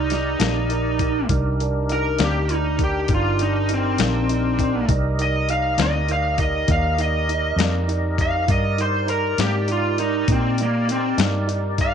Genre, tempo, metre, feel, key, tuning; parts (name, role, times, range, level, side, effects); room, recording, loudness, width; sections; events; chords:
slow blues; 67 BPM (dotted quarters); 12/8; straight; C minor; A4 = 440 Hz
smooth overdriven lead guitar; melody; 0.0-11.9 s; Bb3 to F5; -23 LUFS; equal
warm concert grand piano; accompaniment; 0.0-11.9 s; Eb4 to D5; -29 LUFS; right 10 dB
tonewheel organ; sustained chords; 0.0-11.9 s; D4 to Eb5; -29 LUFS; left 1 dB; slow rotary speaker, overdrive, chorus vibrato
vintage muted fingered electric bass; bass; 0.0-11.9 s; G1 to Bb2; -23 LUFS; equal
dusty soul sampler-style drum kit; drums; 0.1-11.9 s; hi-hat, kick drum, snare drum; -24 LUFS; left 3 dB
electric guitar through a small old amp; accompaniment; 0.4-11.4 s; C3 to D4; -31 LUFS; left 11 dB; tremolo
light reverb; 1960s-style stereo with parts hard left and right, nothing above 10.8 kHz; -18 LUFS; side -8 dB against mid
0.0-11.9 A section
lead electric guitar solo 0.0-11.9
0.0 Cm9